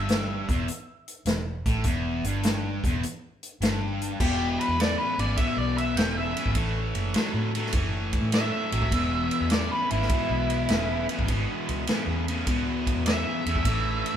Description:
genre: blues rock power trio and southern rock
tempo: 102 BPM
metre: 4/4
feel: swing 68% on 8ths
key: E major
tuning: A4 = 441 Hz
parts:
  - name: octave-fuzz lead guitar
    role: melody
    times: 0.0-14.2 s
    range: E4 to G5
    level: -29 LUFS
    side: right 1 dB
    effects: distortion
  - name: distorted electric guitar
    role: riff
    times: 0.0-14.2 s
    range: E2 to F#3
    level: -29 LUFS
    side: left 2 dB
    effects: distortion
  - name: vintage muted fingered electric bass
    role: bass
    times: 0.0-14.2 s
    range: E1 to A2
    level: -30 LUFS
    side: equal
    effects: none
  - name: vintage drum kit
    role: drums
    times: 0.1-14.1 s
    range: crash cymbal, hi-hat, kick drum, ride cymbal, snare drum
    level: -28 LUFS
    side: equal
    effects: none
  - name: overdriven tonewheel organ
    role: sustained chords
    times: 4.2-14.2 s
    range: B3 to C#5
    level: -41 LUFS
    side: right 2 dB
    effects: slow rotary speaker
room: light reverb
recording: band playing live in one room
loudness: -24 LUFS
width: side -9 dB against mid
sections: 0.0-4.2 A section; 4.2-14.2 B section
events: lead electric guitar solo 4.2-14.2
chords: 0.0 N.C.; 4.2 E; 6.6 A; 8.9 E; 13.7 A

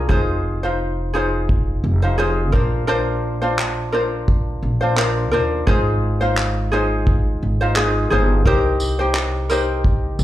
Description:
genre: acoustic pop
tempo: 86 BPM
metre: 4/4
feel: swing 55% on 16ths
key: unclear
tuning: A4 = 441 Hz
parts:
  - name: ukulele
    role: accompaniment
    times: 0.0-10.2 s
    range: D4 to C5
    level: -20 LUFS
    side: left 1 dB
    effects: slapback echo
  - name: upright bass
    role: bass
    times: 0.0-10.2 s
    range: F1 to Eb2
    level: -21 LUFS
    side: equal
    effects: none
  - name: cloth-damped thuddy drum kit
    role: drums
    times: 0.1-10.2 s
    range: handclaps, kick drum, tambourine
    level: -19 LUFS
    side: equal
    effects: none
room: small room reverb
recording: live gig heard through the venue's PA, club reverb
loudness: -16 LUFS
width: side -14 dB against mid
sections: 0.1-10.2 A section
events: none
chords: 0.1 Fm7; 2.5 Bbadd9; 5.7 Fm7/Ab; 8.5 Cm7

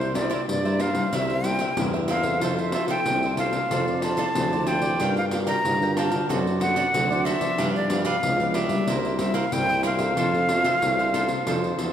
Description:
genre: samba and choro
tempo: 93 BPM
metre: 4/4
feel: straight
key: F major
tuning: A4 = 441 Hz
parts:
  - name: jazz flute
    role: melody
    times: 0.0-11.9 s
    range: C5 to Bb5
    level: -25 LUFS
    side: equal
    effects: none
  - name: cavaquinho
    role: accompaniment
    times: 0.0-11.9 s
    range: D4 to G5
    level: -30 LUFS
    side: right 4 dB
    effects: none
  - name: nylon-string guitar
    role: accompaniment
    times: 0.0-11.9 s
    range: G2 to Bb4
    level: -30 LUFS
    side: left 2 dB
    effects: none
  - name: warm tuba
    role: bass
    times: 0.0-11.9 s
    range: C2 to G2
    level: -28 LUFS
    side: equal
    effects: none
  - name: pandeiro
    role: percussion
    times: 0.0-11.9 s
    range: none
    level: -28 LUFS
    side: left 1 dB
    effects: none
room: wet scoring stage reverb, RT60 1.6 s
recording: none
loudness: -21 LUFS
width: side -9 dB against mid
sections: 0.0-11.9 A section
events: none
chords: 0.0 C7; 2.4 Fmaj7; 3.7 Dm9/F; 5.0 Gm7; 6.3 D7/F#; 7.6 G7; 8.9 C7; 10.2 Fmaj7

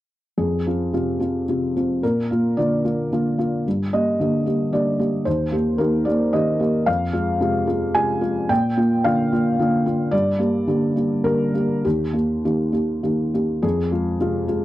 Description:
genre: neoclassical minimalist piano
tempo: 99-114 BPM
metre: 3/4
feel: rubato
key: F dorian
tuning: A4 = 440 Hz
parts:
  - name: felt-muted upright piano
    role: solo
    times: 0.4-14.6 s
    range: Eb2 to Ab5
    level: -18 LUFS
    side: equal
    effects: none
room: light reverb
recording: dry, close 1970s-style studio recording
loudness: -18 LUFS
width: side -15 dB against mid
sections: 0.4-13.6 A section; 13.6-14.6 A section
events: none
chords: 0.4 Fm; 2.0 Bb; 3.7 Gm; 5.3 Eb; 6.9 Fm; 8.5 Bb; 10.1 Gm; 11.8 Eb; 13.6 Fm

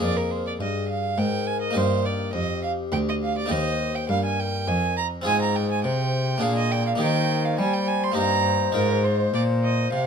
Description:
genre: classical, baroque-style sonata movement with continuo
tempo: 103 BPM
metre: 3/4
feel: straight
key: Eb major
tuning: A4 = 440 Hz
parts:
  - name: mellow baroque flute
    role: melody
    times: 0.0-10.1 s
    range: G4 to D5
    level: -30 LUFS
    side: left 11 dB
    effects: none
  - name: warm violin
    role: second line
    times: 0.0-10.1 s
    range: Bb4 to C6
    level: -26 LUFS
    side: right 6 dB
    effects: none
  - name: harpsichord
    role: accompaniment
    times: 0.0-10.1 s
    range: D2 to Ab4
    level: -27 LUFS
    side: left 2 dB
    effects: none
  - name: warm cello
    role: bass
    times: 0.0-10.1 s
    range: D2 to G3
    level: -26 LUFS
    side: right 1 dB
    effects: none
room: little or no reverb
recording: close, detailed microphones, faint mains hum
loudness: -21 LUFS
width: side -6 dB against mid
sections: 0.0-10.1 A section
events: none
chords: 0.0 Bb5/F; 1.8 Eb; 5.3 Fm/Ab; 6.4 Bb7; 7.0 Eb; 8.2 Eb/G; 8.8 Fm7/Ab

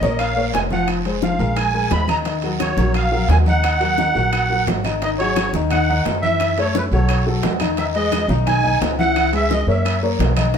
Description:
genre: Afro-Cuban jazz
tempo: 174 BPM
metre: 4/4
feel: straight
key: Eb minor, G# minor from 5.0 s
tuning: A4 = 440 Hz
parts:
  - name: musette accordion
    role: melody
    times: 0.0-10.6 s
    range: B4 to Cb6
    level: -21 LUFS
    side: right 2 dB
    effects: none
  - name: warm baby grand piano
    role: accompaniment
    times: 0.0-10.6 s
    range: Eb3 to F5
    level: -22 LUFS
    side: left 4 dB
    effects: none
  - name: upright bass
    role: bass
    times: 0.0-10.6 s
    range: F1 to F#2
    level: -21 LUFS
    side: right 1 dB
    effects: none
  - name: congas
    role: percussion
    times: 0.0-10.6 s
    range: none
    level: -28 LUFS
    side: right 3 dB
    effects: none
  - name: guiro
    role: percussion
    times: 0.0-10.6 s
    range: none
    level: -35 LUFS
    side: right 6 dB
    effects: none
  - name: bongos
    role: percussion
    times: 0.2-10.6 s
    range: none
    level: -29 LUFS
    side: left 7 dB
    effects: none
  - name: claves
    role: percussion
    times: 0.2-10.5 s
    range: none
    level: -35 LUFS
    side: left 3 dB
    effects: none
  - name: timbales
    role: percussion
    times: 0.2-10.6 s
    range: none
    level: -28 LUFS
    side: right 5 dB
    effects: none
room: moderate stone room reverb, RT60 1.0 s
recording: band playing live in one room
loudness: -16 LUFS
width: side -7 dB against mid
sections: 0.0-5.0 A section; 5.0-10.6 B section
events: none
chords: 0.0 Gbmaj7 (rootless); 0.9 Fm; 1.6 Abmadd9/Bb; 2.3 Ebm; 5.0 G#7sus4; 6.4 F#m7; 7.1 B7; 7.8 Emaj7; 9.2 C#m7; 9.9 F#

